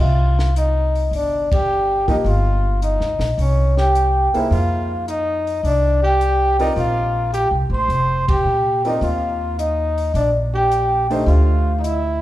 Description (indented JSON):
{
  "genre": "jazz, small-group swing and bop",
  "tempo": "106 BPM",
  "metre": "4/4",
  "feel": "swing 69% on 8ths",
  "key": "C minor",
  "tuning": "A4 = 441 Hz",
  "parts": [
    { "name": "vibraphone with soft mallets", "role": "melody", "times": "0.0-12.2 s", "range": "Db5 to C6", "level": "-20 LUFS", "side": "left 1 dB", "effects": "none" },
    { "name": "breathy trumpet", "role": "second line", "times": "0.0-12.2 s", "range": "Db4 to C5", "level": "-25 LUFS", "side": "right 2 dB", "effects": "none" },
    { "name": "upright bass", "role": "bass", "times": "0.0-12.2 s", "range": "F1 to Bb2", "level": "-19 LUFS", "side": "equal", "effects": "none" },
    { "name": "compact cocktail drum kit", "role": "drums", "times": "0.4-12.0 s", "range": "hi-hat, kick drum, ride cymbal, snare drum", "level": "-24 LUFS", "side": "equal", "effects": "none" },
    { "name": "warm upright piano", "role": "accompaniment", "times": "2.1-11.8 s", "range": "F3 to D5", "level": "-26 LUFS", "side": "equal", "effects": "none" }
  ],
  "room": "moderate recital hall reverb, RT60 1.7 s",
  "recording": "recorded in a church or concert hall",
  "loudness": "-16 LUFS",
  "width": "side -14 dB against mid",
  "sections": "0.0-12.2 A section",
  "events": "band accent 1.4, 8.2",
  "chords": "0.0 Cm; 2.3 Gm7b5; 3.4 C5; 4.5 Fm9; 6.8 Bb69; 9.0 Ebmaj9; 11.3 Dm9"
}